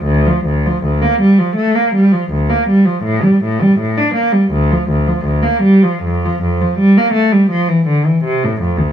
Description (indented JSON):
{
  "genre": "classical, baroque-style suite movement for unaccompanied cello",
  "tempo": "82 BPM",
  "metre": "4/4",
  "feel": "rubato",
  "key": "D minor",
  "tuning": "A4 = 440 Hz",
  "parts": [
    { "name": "rich cello", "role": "solo", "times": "0.0-8.9 s", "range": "D2 to D4", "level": "-11 LUFS", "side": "equal", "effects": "none" }
  ],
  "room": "moderate studio reverb, RT60 0.9 s",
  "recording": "none",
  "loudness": "-11 LUFS",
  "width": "side -9 dB against mid",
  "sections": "0.1-8.9 A section",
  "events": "none",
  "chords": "none"
}